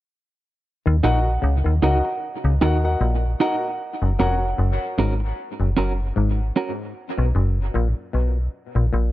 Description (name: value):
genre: reggae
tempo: 76 BPM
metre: 4/4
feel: swing 56% on 16ths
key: Eb minor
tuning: A4 = 440 Hz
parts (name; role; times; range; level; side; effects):
- muted clav; riff; 0.9-9.1 s; F2 to Eb3; -27 LUFS; left 4 dB; dub echo
- metallic FM bass; bass; 0.9-9.1 s; F1 to Eb2; -20 LUFS; equal; none
- clean electric guitar; accompaniment; 1.0-6.7 s; Db4 to Bb4; -26 LUFS; right 4 dB; tremolo, dub echo
- dark concert grand piano; stabs; 1.0-4.4 s; Gb4 to Gb5; -26 LUFS; left 1 dB; dub echo
room: moderate spring reverb, RT60 2.7 s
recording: none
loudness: -19 LUFS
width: side -15 dB against mid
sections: 0.6-9.1 A section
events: none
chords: 0.6 Ebm; 3.8 Gb; 7.0 B5